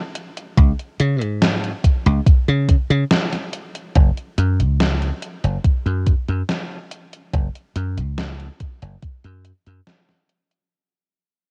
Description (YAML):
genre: vaporwave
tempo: 71 BPM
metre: 4/4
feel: straight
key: unclear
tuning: A4 = 442 Hz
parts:
  - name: gated 80s digital drum machine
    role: drums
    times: 0.2-10.7 s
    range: hi-hat, snare drum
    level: -24 LUFS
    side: equal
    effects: gated reverb, gated reverb snare, vintage 12-bit sampler grit, cassette tape
  - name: dry thumbed slap bass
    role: bass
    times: 0.6-9.8 s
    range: F#1 to C#3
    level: -21 LUFS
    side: equal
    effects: none
  - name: electronic kick drum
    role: drums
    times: 0.6-9.2 s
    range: none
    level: -17 LUFS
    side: equal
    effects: vintage 12-bit sampler grit, cassette tape
room: little or no reverb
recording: home recording on cassette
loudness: -19 LUFS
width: mono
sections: 0.0-4.0 A section; 4.0-10.7 B section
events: break 3.1-4.0; fade-out 4.0-10.7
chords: none